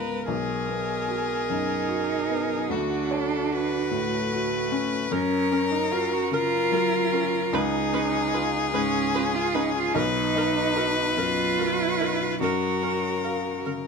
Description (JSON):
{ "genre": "neoclassical piano and strings", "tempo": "50 BPM (dotted quarters)", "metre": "6/8", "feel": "rubato", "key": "F# major", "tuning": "A4 = 440 Hz", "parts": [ { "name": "clear violin", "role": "melody", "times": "0.0-13.9 s", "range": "F#4 to B4", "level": "-27 LUFS", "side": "left 6 dB", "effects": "none" }, { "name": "rich cello", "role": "second line", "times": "0.0-13.6 s", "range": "G#3 to F#4", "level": "-27 LUFS", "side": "right 8 dB", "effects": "none" }, { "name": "clear viola", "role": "accompaniment", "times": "0.0-13.7 s", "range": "F#4 to B4", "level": "-32 LUFS", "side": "right 5 dB", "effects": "none" }, { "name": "warm baby grand piano", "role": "accompaniment", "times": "0.0-13.9 s", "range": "B1 to E#5", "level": "-28 LUFS", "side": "left 3 dB", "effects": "none" } ], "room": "light reverb", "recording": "close, detailed microphones", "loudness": "-22 LUFS", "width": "side -5 dB against mid", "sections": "0.0-13.9 A section", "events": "none", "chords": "0.3 Bmaj7; 2.7 Dmaj7; 5.1 F#maj7; 7.5 C#7; 10.0 Bmaj7; 12.4 F#maj7", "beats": "| 0.28 1.50 | 2.71 3.92 | 5.12 6.33 | 7.53 8.74 | 9.95 11.17 | 12.41 13.66" }